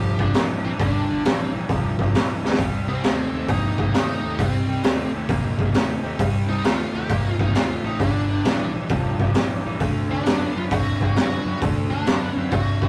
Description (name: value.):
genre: blues rock power trio and southern rock.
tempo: 133 BPM.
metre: 4/4.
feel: swing 66% on 8ths.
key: G minor.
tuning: A4 = 440 Hz.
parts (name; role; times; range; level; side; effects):
bluesy overdriven lead guitar; melody; 0.0-12.9 s; Bb3 to G4; -30 LUFS; equal; distortion.
overdriven tonewheel organ; sustained chords; 0.0-12.9 s; G3 to E#5; -40 LUFS; equal; none.
raw garage guitar; riff; 0.0-12.9 s; G2 to C4; -30 LUFS; equal; overdrive.
fuzz fingered electric bass; bass; 0.0-12.9 s; F1 to F#2; -33 LUFS; equal; overdrive.
raw garage drum kit; drums; 0.2-12.9 s; hi-hat, kick drum, snare drum; -24 LUFS; equal; none.
room: moderate booth ambience, RT60 0.2 s.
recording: rough rehearsal-room recording.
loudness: -22 LUFS.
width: mono.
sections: 0.0-12.9 A section.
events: drum fill 2.4.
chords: 0.0 Gm; 2.6 Cm; 8.0 Gm; 9.8 D7#9.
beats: 0.34 | 0.79 1.24 1.69 2.14 | 2.59 3.04 3.49 3.94 | 4.39 4.84 5.29 5.74 | 6.19 6.64 7.09 7.54 | 8.00 8.45 8.90 9.35 | 9.80 10.26 10.71 11.16 | 11.61 12.07 12.52.